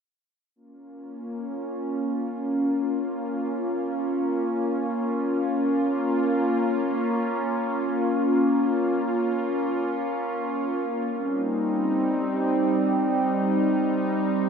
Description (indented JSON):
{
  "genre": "ambient",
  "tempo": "free time",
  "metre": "none",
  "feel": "none",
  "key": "unclear",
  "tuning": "A4 = 440 Hz",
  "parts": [
    { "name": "evolving wavetable pad", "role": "sustained chords", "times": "1.0-14.5 s", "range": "G3 to F4", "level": "-23 LUFS", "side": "equal", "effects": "chorus, built-in reverb" }
  ],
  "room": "wet lush hall reverb, RT60 2.5 s",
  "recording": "dreamy mix soaked in reverb",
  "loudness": "-23 LUFS",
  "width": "side -6 dB against mid",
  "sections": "0.6-14.5 A section",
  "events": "none",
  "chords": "0.6 Bbm; 11.1 Cm",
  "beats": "free time"
}